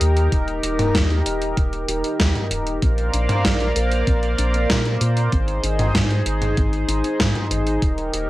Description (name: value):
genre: synthwave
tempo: 96 BPM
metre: 4/4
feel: straight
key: unclear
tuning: A4 = 440 Hz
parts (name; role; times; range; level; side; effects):
- chorused pulse-width pad; sustained chords; 0.0-8.3 s; Bb3 to F5; -23 LUFS; equal; sidechain pumping, cassette tape
- warbly dusty pluck; arpeggios; 0.0-8.3 s; C4 to Eb5; -35 LUFS; left 2 dB; none
- round analog bass; bass; 0.0-8.3 s; Eb1 to Bb2; -22 LUFS; equal; none
- gated 80s digital drum machine; drums; 0.0-8.3 s; hi-hat, snare drum, toms; -22 LUFS; equal; gated reverb, gated reverb snare, cassette tape
- electronic kick drum; drums; 0.3-7.9 s; none; -21 LUFS; equal; cassette tape
room: light reverb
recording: home recording on cassette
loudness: -18 LUFS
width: side -16 dB against mid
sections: 0.0-8.3 A section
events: none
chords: 0.0 Eb; 2.8 Bbadd9; 5.3 Ab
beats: | 0.32 0.95 1.57 2.20 | 2.82 3.45 4.07 4.70 | 5.32 5.95 6.57 7.20 | 7.82